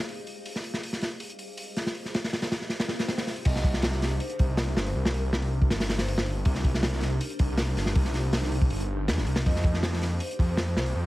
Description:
drum and bass, jungle; 160 BPM; 4/4; straight; C minor; A4 = 437 Hz
granular cloud pad; sustained chords; 0.0-11.1 s; G4 to F5; -38 LUFS; equal; built-in reverb
crunchy breakbeat drum kit; drums; 0.0-10.9 s; crash cymbal, hi-hat, kick drum, snare drum; -27 LUFS; equal
swell; sound effects; 2.9-3.5 s; -40 LUFS; left 1 dB
vibraphone with soft mallets; melody; 3.5-6.3, 9.5-10.9 s; Bb4 to Eb5; -39 LUFS; equal; dub echo
detuned saw bass; bass; 3.5-11.1 s; G1 to F2; -28 LUFS; equal
small room ambience; vinyl crackle; -25 LUFS; side -17 dB against mid
0.0-3.5 A section; 3.5-11.1 B section
swell 2.9-3.5; drop 3.5-11.1
0.0 Fm9; 3.5 Cm9; 9.5 Fm9

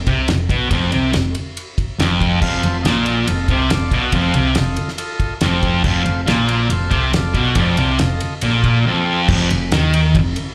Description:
garage rock duo or trio; 140 BPM; 4/4; straight; F mixolydian; A4 = 440 Hz
thick fuzz guitar; riff; 0.0-10.3 s; F2 to Eb3; -19 LUFS; equal; distortion, slapback echo
picked electric bass; bass; 0.0-10.3 s; F1 to Eb2; -23 LUFS; equal
cloth-damped thuddy drum kit; drums; 0.1-10.5 s; crash cymbal, kick drum, ride cymbal, snare drum; -24 LUFS; equal
combo organ; sustained chords; 2.4-9.2 s; F4 to Eb5; -28 LUFS; equal; subtle chorus
light reverb; live gig heard through the venue's PA, club reverb; -17 LUFS; mono
0.0-9.3 A section; 9.3-10.5 B section
0.0 F; 9.3 N.C.

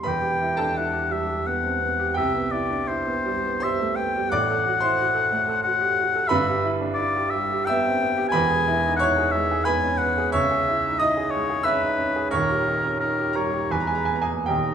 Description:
classical, romantic duo for oboe and grand piano; 75-92 BPM; 3/4; rubato; E minor; A4 = 440 Hz
bright baby grand piano; accompaniment; 0.0-14.7 s; D#1 to E6; -23 LUFS; right 3 dB
warm oboe; melody; 0.1-14.7 s; A#4 to G#5; -24 LUFS; left 4 dB
wet recital hall reverb, RT60 1.6 s; minimal, uncompressed stereo recording; -20 LUFS; side -8 dB against mid
0.1-14.7 A section
0.1 Em; 2.2 Cmaj7; 4.3 F#dim/A; 6.3 Em/G; 8.3 E; 10.3 C#m; 12.3 D#7; 13.7 E

